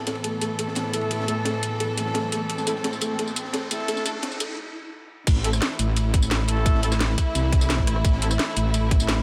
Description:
dark technical drum and bass; 173 BPM; 4/4; straight; A minor; A4 = 438 Hz
dark studio string section; sustained chords; 0.0-9.2 s; A2 to A4; -32 LUFS; equal; sidechain pumping
riser; sound effects; 0.0-4.6 s; -41 LUFS; equal
felt-muted upright piano; arpeggios; 0.1-4.5 s; A3 to A4; -33 LUFS; equal; sidechain pumping, low-pass filter, digital delay
crunchy breakbeat drum kit; drums; 0.1-9.2 s; ride cymbal, snare drum; -37 LUFS; equal; high-pass filter on cymbals, high-pass filter on snare, high-pass filter on room
drum and bass drum kit; drums; 0.1-9.2 s; crash cymbal, hi-hat, rim click, snare drum, tambourine; -30 LUFS; equal
warm brass ensemble; stabs; 0.9-8.3 s; A3 to A4; -35 LUFS; equal; low-pass filter, digital delay
metallic wobble bass; bass; 5.3-9.2 s; A1 to C2; -25 LUFS; equal; chorus, tube saturation, sidechain pumping
electronic kick drum; drums; 5.3-9.0 s; -22 LUFS; equal
light reverb; high-pass filter; -24 LUFS; mono
0.0-5.3 A section; 5.3-9.2 B section
build-up 0.0-5.3; filter sweep on felt piano 0.0-5.3; filter sweep on brass ensemble 0.0-5.3; break 4.6-5.3; drop 5.3-9.2
0.0 A5

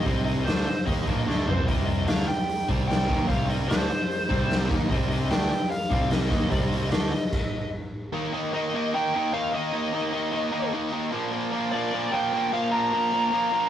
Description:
hard rock; 149 BPM; 4/4; straight; C minor; A4 = 440 Hz
smooth overdriven lead guitar; melody; 0.0-13.7 s; C5 to Bb5; -28 LUFS; equal
distorted electric guitar; riff; 0.0-13.7 s; Bb2 to Eb4; -28 LUFS; equal; overdrive
fuzz picked electric bass; bass; 0.0-7.1 s; Bb1 to Eb2; -29 LUFS; equal; overdrive
raw garage drum kit; drums; 0.1-7.4 s; crash cymbal, hi-hat, kick drum, snare drum, toms; -26 LUFS; equal
light reverb; rough rehearsal-room recording, tube saturation; -23 LUFS; side -10 dB against mid
0.0-8.1 A section; 8.1-13.7 B section
drum fill 1.3-1.7; stop 7.3-8.1
0.0 Cm; 8.1 Eb5; 11.1 Bb5

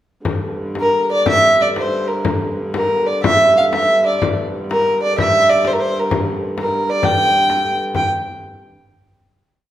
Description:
medieval dance; 119-138 BPM (dotted quarters); 6/8; straight; G dorian; A4 = 440 Hz
dark hurdy-gurdy; drone; 0.2-8.0 s; G2 to D3; -25 LUFS; right 1 dB
frame drum; percussion; 0.2-8.1 s; -22 LUFS; left 3 dB
dark fiddle; melody; 0.8-8.1 s; Bb4 to G5; -15 LUFS; equal
wet recital hall reverb, RT60 1.4 s; -14 LUFS; side -12 dB against mid
0.2-7.9 A section; 7.9-8.8 final note
speeding up 0.2-8.8

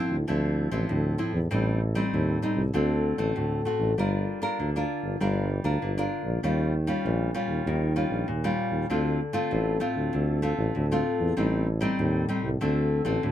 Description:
samba and choro; 97 BPM; 4/4; straight; D minor; A4 = 440 Hz
nylon-string guitar; accompaniment; 0.0-13.3 s; A2 to Bb4; -27 LUFS; left 1 dB
breathy tuba; bass; 0.1-13.3 s; G1 to E2; -27 LUFS; equal
little or no reverb; close, detailed microphones; -24 LUFS; side -11 dB against mid
0.0-13.3 A section
0.0 Dm9; 1.5 Am7b5; 2.7 D7; 4.0 Gm7; 6.4 Eb9; 8.9 Dm7; 11.4 Am7b5; 12.6 D7

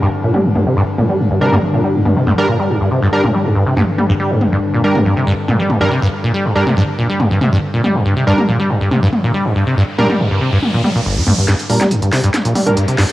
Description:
driving peak-time techno; 140 BPM; 4/4; straight; G minor; A4 = 443 Hz
acid bass, saw; riff; 0.0-13.0 s; G1 to G3; -14 LUFS; equal; lush chorus, cassette tape, analog delay
metallic inharmonic drone; drone; 0.0-11.5 s; G2 to D3; -22 LUFS; left 1 dB; chorus, built-in reverb, cassette tape
techno drum kit; drums; 0.3-13.1 s; hi-hat, snare drum, toms; -18 LUFS; equal; high-pass filter on hats, low-pass filter on hats, cassette tape, high-pass filter on cymbals, low-pass filter on cymbals, high-pass filter on toms, low-pass filter on toms, high-pass filter on snare, low-pass filter on snare, high-pass filter on room, low-pass filter on room
sync-sweep polysynth; stabs; 1.4-12.7 s; G3 to Bb4; -19 LUFS; right 1 dB; chorus, vintage 12-bit sampler grit, cassette tape, analog delay
riser; sound effects; 9.2-13.1 s; -26 LUFS; equal
moderate lush hall reverb, RT60 1.8 s; home recording on cassette; -12 LUFS; side -16 dB against mid
0.0-11.5 A section; 11.5-13.1 B section
filter sweep on acid bass 0.0-11.5; riser 9.2-11.5, 11.5-13.1; build-up 11.5-13.1; drum fill 11.5-13.1; filter sweep on analog polysynth 11.5-13.1
0.0 Gm

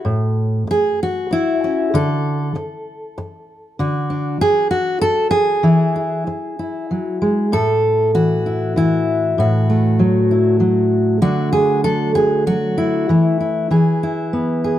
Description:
folk, solo fingerstyle acoustic guitar; 97 BPM; 3/4; straight; A4 = 438 Hz
fingerpicked steel-string acoustic guitar; solo; 0.0-14.8 s; A2 to A4; -15 LUFS; equal
light reverb; -15 LUFS; side -12 dB against mid
0.0-7.5 A section; 7.5-14.8 B section
0.1 A; 1.9 D5; 3.8 D; 5.6 E; 7.5 A5; 11.2 D; 13.1 Esus4; 13.7 E

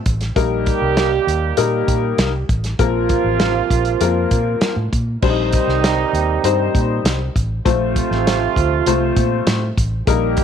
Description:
uptempo 1960s-style soul; 99 BPM; 4/4; straight; A4 = 438 Hz
warm horn section; second line; 0.0-10.4 s; C3 to G4; -20 LUFS; right 11 dB
vintage muted fingered electric bass; bass; 0.1-10.4 s; A1 to Bb2; -21 LUFS; equal
warm soul drum kit; drums; 0.1-10.4 s; crash cymbal, hi-hat, kick drum, snare drum; -20 LUFS; equal
warm upright piano; accompaniment; 0.4-10.4 s; F3 to C5; -20 LUFS; left 12 dB
little or no reverb; 1960s-style stereo with parts hard left and right; -15 LUFS; side -8 dB against mid
0.0-5.2 A section; 5.2-10.4 A section
0.4 Eb/Bb; 2.8 Bbsus2; 5.2 Cm/Bb; 7.6 F

